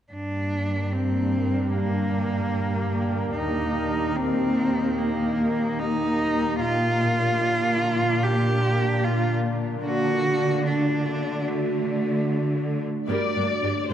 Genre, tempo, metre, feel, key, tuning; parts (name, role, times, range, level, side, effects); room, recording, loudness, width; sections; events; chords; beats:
cinematic; 74 BPM (dotted quarters); 6/8; straight; G minor; A4 = 440 Hz
rich cello; melody; 0.1-12.8 s; A3 to G4; -25 LUFS; equal; tape echo
deep dark ambient pad; sustained chords; 0.5-13.9 s; A3 to D5; -28 LUFS; left 2 dB; chorus, built-in reverb
warm symphonic cello section; bass; 0.1-13.9 s; Eb2 to D3; -26 LUFS; right 1 dB
dark symphonic violin section; melody; 13.1-13.9 s; D5; -26 LUFS; left 6 dB
warm symphonic viola section; accompaniment; 13.1-13.9 s; G3 to G4; -29 LUFS; right 1 dB
moderate concert hall reverb, RT60 2.3 s; -22 LUFS; side -10 dB against mid
0.1-13.1 A section
0.1 Gm; 3.4 Eb; 6.6 Bb; 9.8 D; 13.1 Gm
| 0.12 0.93 | 1.74 2.55 | 3.36 4.17 | 4.98 5.79 | 6.61 7.42 | 8.23 9.04 | 9.85 10.66 | 11.47 12.28 | 13.09 13.90